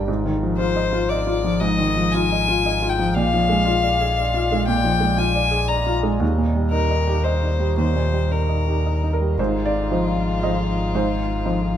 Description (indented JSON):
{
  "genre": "neoclassical piano and strings",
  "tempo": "117 BPM",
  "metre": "3/4",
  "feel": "rubato",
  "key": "unclear",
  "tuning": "A4 = 440 Hz",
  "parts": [
    { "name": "felt-muted upright piano", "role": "accompaniment", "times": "0.0-11.8 s", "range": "Eb2 to Eb5", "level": "-22 LUFS", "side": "right 1 dB", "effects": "none" },
    { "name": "pedal harmonium", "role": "sustained chords", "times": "0.0-11.8 s", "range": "G3 to Eb5", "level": "-32 LUFS", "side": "equal", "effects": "none" },
    { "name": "sub bass with octave", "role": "bass", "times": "0.0-11.8 s", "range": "Ab1 to Eb2", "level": "-23 LUFS", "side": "equal", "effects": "none" },
    { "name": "rich violin", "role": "melody", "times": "0.6-11.8 s", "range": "F4 to Bb5", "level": "-23 LUFS", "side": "left 5 dB", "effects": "none" }
  ],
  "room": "moderate recital hall reverb, RT60 1.6 s",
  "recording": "none",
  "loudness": "-18 LUFS",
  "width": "side -10 dB against mid",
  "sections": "0.0-9.4 A section; 9.4-11.8 B section",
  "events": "none",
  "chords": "0.1 Fm7/Ab; 3.2 Bb7; 6.2 Eb; 9.4 Ab6",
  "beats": "| 0.08 0.59 1.10 | 1.62 2.14 2.65 | 3.16 3.67 4.17 | 4.68 5.19 5.70 | 6.21 6.73 7.25 | 7.78 8.32 8.86 | 9.38 9.90 10.42 | 10.93 11.45"
}